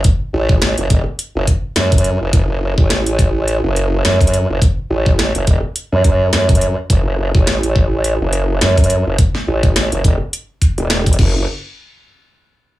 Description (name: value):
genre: glitch hop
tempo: 105 BPM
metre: 4/4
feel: swing 56% on 16ths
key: F# minor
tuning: A4 = 441 Hz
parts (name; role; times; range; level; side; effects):
- formant-sweep wobble bass; bass; 0.0-11.5 s; E1 to F#2; -15 LUFS; equal; chorus
- drum and bass drum kit; drums; 0.0-11.3 s; crash cymbal, hi-hat, snare drum; -19 LUFS; equal; none
- electronic kick drum; drums; 0.0-11.3 s; none; -13 LUFS; equal; none
room: little or no reverb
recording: small room ambience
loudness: -13 LUFS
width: side -16 dB against mid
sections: 0.0-11.5 A section; 11.5-12.8 B section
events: none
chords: none